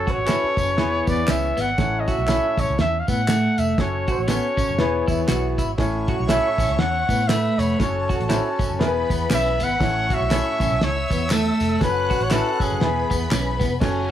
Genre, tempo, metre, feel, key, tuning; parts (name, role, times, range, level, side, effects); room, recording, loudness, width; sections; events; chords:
uptempo 1960s-style soul; 120 BPM; 4/4; swing 60% on 8ths; A major; A4 = 440 Hz
warm trumpet; melody; 0.0-13.3 s; G#4 to F#5; -24 LUFS; equal; tape echo
clear baby grand piano; accompaniment; 0.0-14.1 s; A2 to C#5; -26 LUFS; left 2 dB
vintage muted picked electric bass; bass; 0.0-14.1 s; E1 to A2; -26 LUFS; equal
clean electric guitar; riff; 0.1-13.7 s; A3 to F#4; -27 LUFS; equal; spring reverb
cloth-damped thuddy drum kit; drums; 0.1-14.0 s; crash cymbal, hi-hat, kick drum, snare drum; -24 LUFS; right 1 dB
handclaps and tambourine; percussion; 0.3-14.0 s; -35 LUFS; right 3 dB
warm symphonic string section; second line; 5.8-14.1 s; C#4 to F#6; -31 LUFS; left 2 dB
light reverb, studio ambience; -18 LUFS; side -10 dB against mid
0.0-13.8 A section
0.0 F#m; 0.8 E; 1.8 A; 3.8 F#m; 4.8 E; 5.8 A; 7.8 F#m; 8.8 E; 9.8 A; 11.8 F#m; 12.8 E